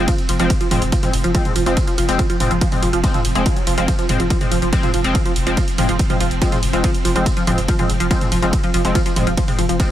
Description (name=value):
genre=driving peak-time techno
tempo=142 BPM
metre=4/4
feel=straight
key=F minor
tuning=A4 = 440 Hz
part: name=tight sequenced synth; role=riff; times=0.0-9.8 s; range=F3 to Ab3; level=-22 LUFS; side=right 1 dB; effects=chorus, phaser, sidechain pumping, tape echo
part: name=sync-sweep polysynth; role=stabs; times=0.0-9.9 s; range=F3 to C4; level=-23 LUFS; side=left 2 dB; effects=chorus, vintage 12-bit sampler grit, sidechain pumping, dub echo
part: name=saturated sub bass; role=bass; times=0.0-9.8 s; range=F1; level=-22 LUFS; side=equal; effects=overdrive, sidechain pumping, low-pass filter
part: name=swarming drone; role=drone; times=0.0-9.9 s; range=F3 to C4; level=-27 LUFS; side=right 2 dB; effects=built-in reverb, sidechain pumping
part: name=electronic kick drum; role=drums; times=0.1-9.9 s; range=none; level=-19 LUFS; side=equal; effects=overdrive
part: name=punchy analog drum machine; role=drums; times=0.1-9.9 s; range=hi-hat, ride cymbal, toms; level=-25 LUFS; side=right 1 dB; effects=sidechain pumping on hats, sidechain pumping on toms, sidechain pumping on cymbals
room=little or no reverb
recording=none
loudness=-15 LUFS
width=side -12 dB against mid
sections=0.0-9.9 A section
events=none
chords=0.0 Fm